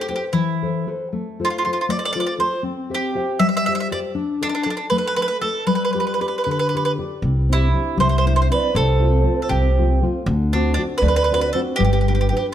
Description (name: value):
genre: italian folk, Italian serenade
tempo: 79 BPM (dotted quarters)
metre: 6/8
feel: straight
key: C major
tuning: A4 = 440 Hz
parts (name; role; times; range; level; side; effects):
- bowl-back mandolin; melody; 0.0-12.5 s; D4 to E5; -22 LUFS; right 2 dB; none
- nylon-string guitar; accompaniment; 0.0-12.5 s; C3 to E5; -23 LUFS; left 4 dB; none
- upright bass; bass; 7.2-12.3 s; G1 to D2; -18 LUFS; equal; none
- mellow hollow polished pan flute; second line; 7.5-12.5 s; F#4 to E5; -25 LUFS; right 6 dB; none
room: moderate recital hall reverb, RT60 1.6 s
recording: close, detailed microphones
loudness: -17 LUFS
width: side -10 dB against mid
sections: 0.0-12.5 A section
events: none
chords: 0.0 Amadd9; 1.1 F/A; 2.6 C; 4.2 Dsus2; 5.7 G; 7.2 Cadd9; 8.8 F/C; 10.3 D7; 11.8 G